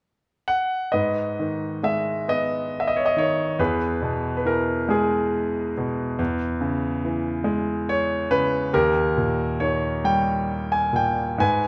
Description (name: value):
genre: classical, lyrical solo piano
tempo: 46 BPM (dotted quarters)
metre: 6/8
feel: uneven beats, rubato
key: G# minor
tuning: A4 = 443 Hz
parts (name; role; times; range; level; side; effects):
- clear concert grand piano; solo; 0.5-11.7 s; D#2 to G#5; -23 LUFS; equal; none
room: moderate recital hall reverb, RT60 1.6 s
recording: none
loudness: -24 LUFS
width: mono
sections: 0.9-11.7 A section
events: none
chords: 0.0 N.C.; 0.9 G#m; 3.6 E; 6.2 C#m/E; 8.7 D#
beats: | 0.93 2.28 | 3.59 4.90 | 6.20 7.45 | 8.72 10.04 | 11.39